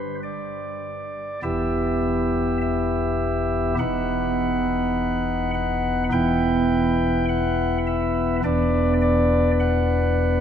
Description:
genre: classical, chorale-style piece for pipe organ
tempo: 51 BPM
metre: 4/4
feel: straight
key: E minor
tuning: A4 = 442 Hz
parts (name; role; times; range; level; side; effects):
- chamber organ, flutes; solo; 0.0-10.4 s; E1 to G5; -20 LUFS; equal; none
room: wet cathedral reverb, RT60 6.6 s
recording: in a vast, echoing space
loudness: -20 LUFS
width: side -8 dB against mid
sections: 0.0-1.4 A section; 1.4-10.4 B section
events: none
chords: 0.0 G (rootless); 1.4 Em; 3.8 B/E; 6.1 Em; 8.4 Bm/E

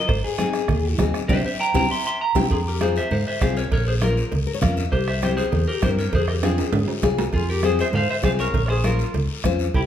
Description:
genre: latin, cumbia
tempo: 199 BPM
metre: 4/4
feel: straight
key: F harmonic minor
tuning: A4 = 437 Hz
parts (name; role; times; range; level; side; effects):
- clean electric guitar; melody; 0.0-9.8 s; E4 to C6; -25 LUFS; left 1 dB; spring reverb
- fingered electric bass; bass; 0.1-9.9 s; Ab1 to Ab2; -24 LUFS; equal; none
- bombo; percussion; 0.1-9.9 s; none; -26 LUFS; right 2 dB; none
- congas; percussion; 0.1-9.9 s; none; -29 LUFS; right 1 dB; none
- cowbell and timbales; percussion; 0.1-9.9 s; none; -30 LUFS; right 6 dB; none
- guiro; percussion; 0.1-9.9 s; none; -36 LUFS; left 6 dB; none
- nylon-string guitar; accompaniment; 0.4-9.7 s; C4 to F5; -26 LUFS; left 6 dB; none
- growling clarinet; second line; 7.4-9.8 s; E4 to C5; -28 LUFS; right 3 dB; none
room: moderate large studio reverb, RT60 0.9 s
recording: heard from further back in the room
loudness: -19 LUFS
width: side -10 dB against mid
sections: 0.0-2.5 A section; 2.5-9.9 B section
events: clean electric guitar solo 0.0-2.5; band accent 1.3-2.5; drum fill 2.1-2.5, 6.4-7.3; nylon-string guitar fill 4.3-4.9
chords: 0.1 Ab; 1.3 C; 2.5 Fm; 3.7 Bbm; 4.9 C7; 6.1 Fm; 8.5 Bbm

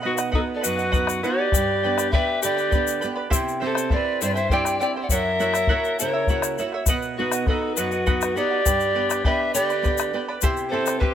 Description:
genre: andean folk, Andean ensemble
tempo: 67 BPM (dotted quarters)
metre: 6/8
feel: straight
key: unclear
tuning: A4 = 440 Hz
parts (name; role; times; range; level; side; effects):
- charango; accompaniment; 0.0-11.1 s; E4 to B5; -28 LUFS; right 2 dB; none
- nylon-string guitar; accompaniment; 0.0-11.1 s; F#2 to G4; -29 LUFS; right 4 dB; none
- polished pan flute; melody; 0.1-11.1 s; A4 to G5; -25 LUFS; right 1 dB; none
- mellow soprano saxophone; second line; 0.1-11.1 s; D#4 to D5; -27 LUFS; left 4 dB; none
- bombo; percussion; 0.2-11.1 s; none; -23 LUFS; left 2 dB; none
- tube shaker; percussion; 0.2-11.0 s; none; -29 LUFS; left 8 dB; none
room: light reverb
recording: none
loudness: -20 LUFS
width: side -9 dB against mid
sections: 0.0-11.1 A section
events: none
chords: 0.0 B; 1.5 G; 3.3 C; 5.1 F#7; 6.9 B; 8.7 G; 10.4 C

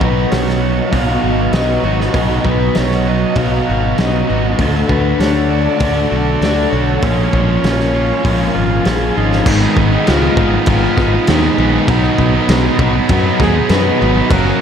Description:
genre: rock, shoegaze and dream pop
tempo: 98 BPM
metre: 4/4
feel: straight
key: B lydian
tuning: A4 = 440 Hz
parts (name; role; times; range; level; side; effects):
- reedy FM lead; melody; 0.0-14.6 s; D#4 to E#5; -20 LUFS; left 1 dB; chorus, analog delay
- airy breathy pad; sustained chords; 0.0-9.5 s; D4 to C#6; -25 LUFS; left 1 dB; chorus
- twangy electric guitar; arpeggios; 0.0-14.6 s; D#3 to F#4; -27 LUFS; right 2 dB; none
- crunchy overdriven guitar; riff; 0.0-14.6 s; G#2 to B4; -19 LUFS; right 7 dB; reverse reverb
- overdriven semi-hollow guitar; riff; 0.0-14.6 s; F#2 to G#4; -19 LUFS; left 6 dB; wide subtle chorus
- modern bright picked electric bass; bass; 0.0-14.5 s; F#1 to F#2; -17 LUFS; equal; none
- loose indie drum kit; drums; 0.0-14.5 s; crash cymbal, hi-hat, kick drum, snare drum; -19 LUFS; equal; none
- tight distorted guitar; riff; 9.5-14.6 s; F#2 to D#4; -22 LUFS; right 1 dB; distortion
room: wet plate reverb, RT60 1.8 s, small room ambience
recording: dreamy mix soaked in reverb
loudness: -12 LUFS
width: side -8 dB against mid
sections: 0.0-9.5 A section; 9.5-14.6 B section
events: none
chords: 0.0 Badd9; 4.6 D; 7.0 A#m7; 9.5 G#m; 11.9 B6

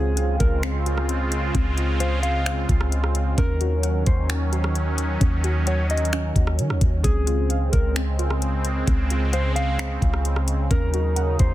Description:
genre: hip hop, atmospheric cloud-rap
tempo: 131 BPM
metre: 4/4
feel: half-time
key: Db major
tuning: A4 = 441 Hz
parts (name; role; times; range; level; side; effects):
- mellow electric guitar; melody; 0.0-11.5 s; Ab4 to F5; -30 LUFS; left 1 dB; low-pass filter, digital delay
- sweeping resonant pad; sustained chords; 0.0-11.5 s; Db3 to F4; -27 LUFS; right 2 dB; chorus, sidechain pumping
- warbly dusty pluck; arpeggios; 0.0-11.5 s; C4 to Gb5; -34 LUFS; left 2 dB; chorus, low-pass filter, digital delay
- soft 808-style bass; bass; 0.0-11.5 s; Db2 to Eb3; -22 LUFS; equal; none
- smooth R&B drum kit; drums; 0.2-11.5 s; finger snaps, hi-hat, kick drum, rim click; -23 LUFS; equal; soft clipping on snare
room: digital ambience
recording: dense, heavily limited modern master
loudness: -20 LUFS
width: side -15 dB against mid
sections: 0.0-11.5 A section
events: none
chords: 0.0 Dbmaj7; 3.4 Ebm7; 7.0 Dbmaj7; 10.7 Ebm7

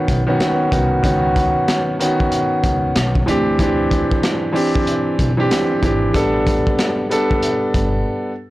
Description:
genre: hip hop, boom-bap hip-hop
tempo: 94 BPM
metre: 4/4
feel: swing 63% on 16ths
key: unclear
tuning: A4 = 441 Hz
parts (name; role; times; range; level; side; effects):
- warm concert grand piano; accompaniment; 0.0-8.3 s; D#3 to A4; -17 LUFS; equal; cassette tape, high-pass filter, low-pass filter
- upright bass; bass; 0.1-8.0 s; G1 to D2; -22 LUFS; equal; tube saturation
- crunchy breakbeat drum kit; drums; 0.1-7.9 s; hi-hat, kick drum, rim click, snare drum; -21 LUFS; equal; none
room: light reverb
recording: blown-out, overdriven recording, overdrive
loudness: -15 LUFS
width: side -17 dB against mid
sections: 0.0-8.5 A section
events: break 8.1-8.5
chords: 0.0 C#9sus4; 3.3 D9sus4; 6.1 A9sus4

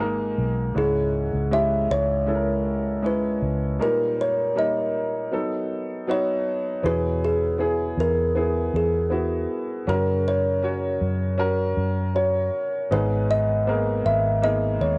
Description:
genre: pop ballad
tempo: 79 BPM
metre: 4/4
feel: straight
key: unclear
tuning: A4 = 445 Hz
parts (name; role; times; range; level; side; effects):
- kalimba; melody; 0.0-15.0 s; G#4 to E5; -27 LUFS; equal; cassette tape
- warm grand piano; accompaniment; 0.0-15.0 s; G#2 to C#5; -29 LUFS; equal; cassette tape
- vintage muted fingered electric bass; bass; 0.0-15.0 s; G#1 to F#2; -28 LUFS; equal; none
room: moderate studio reverb, RT60 0.5 s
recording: home recording on cassette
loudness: -24 LUFS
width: mono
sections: 0.0-6.8 A section; 6.8-15.0 B section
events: none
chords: 0.0 G#sus2; 0.8 C#m; 3.8 D#; 5.3 B7; 6.8 E; 9.9 F#; 12.9 G#madd9

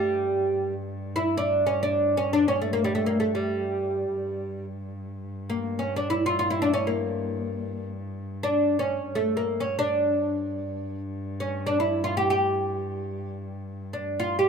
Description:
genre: Arabic maqam ensemble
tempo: free time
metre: none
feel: none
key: G maqam nikriz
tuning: A4 = 439 Hz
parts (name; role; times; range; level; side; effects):
- oud; melody; 0.0-14.5 s; G3 to G4; -24 LUFS; equal; none
- muted cello; drone; 0.0-14.5 s; G2; -34 LUFS; left 1 dB; stereo widening
room: light reverb, small room ambience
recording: rough home demo mix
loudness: -24 LUFS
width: side -6 dB against mid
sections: 0.0-14.5 A section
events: none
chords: none

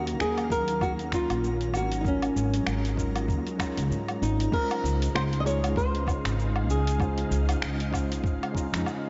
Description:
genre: sunset chillout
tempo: 97 BPM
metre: 4/4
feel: swing 57% on 16ths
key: Db major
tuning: A4 = 442 Hz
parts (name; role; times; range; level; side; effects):
- flamenco guitar; melody; 0.0-8.5 s; Db4 to Eb5; -32 LUFS; equal; digital delay, slapback echo
- mellow tine electric piano; accompaniment; 0.0-9.1 s; Gb3 to F5; -36 LUFS; equal; overdrive
- soft string machine; sustained chords; 0.0-9.1 s; Db3 to F5; -38 LUFS; equal; ensemble chorus
- upright bass; bass; 0.0-8.8 s; Ab1 to Ab2; -31 LUFS; equal; none
- twinkling granular texture; texture; 0.0-4.5 s; Bb5; -51 LUFS; equal; none
- dusty soul sampler-style drum kit; drums; 0.1-9.0 s; cabasa, crash cymbal, finger snaps, hi-hat, woodblock; -38 LUFS; equal; studio reverb, slapback echo
- electronic kick drum; drums; 0.5-8.7 s; none; -32 LUFS; equal; studio reverb
room: moderate lush hall reverb, RT60 2.3 s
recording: big arena sound, nothing above 7.7 kHz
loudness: -27 LUFS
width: mono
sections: 0.0-4.5 A section; 4.5-9.1 B section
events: none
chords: 0.0 Ab13sus4; 4.5 Dbmaj7

